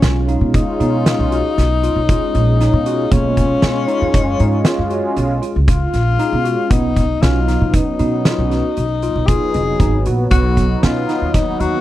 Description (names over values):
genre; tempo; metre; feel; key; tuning
progressive instrumental, band music in an uneven meter; 117 BPM; 7/4; straight; unclear; A4 = 440 Hz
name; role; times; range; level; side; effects
breathy alto saxophone; second line; 0.0-11.8 s; C#4 to G#4; -20 LUFS; left 6 dB; none
sweeping resonant pad; accompaniment; 0.0-11.8 s; F#3 to E#5; -22 LUFS; right 2 dB; chorus
tine electric piano; arpeggios; 0.0-11.8 s; A#3 to F#4; -23 LUFS; right 1 dB; medium stereo tremolo
upright bass; bass; 0.0-11.8 s; E#1 to B2; -18 LUFS; equal; none
oversized low-tuned drum kit; drums; 0.0-11.7 s; hi-hat, kick drum, snare drum; -17 LUFS; equal; none
room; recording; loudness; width
little or no reverb; dry, close 1970s-style studio recording; -13 LUFS; side -14 dB against mid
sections
0.0-11.8 A section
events
none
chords
0.0 C#add9/B; 6.7 G#m/B; 10.3 B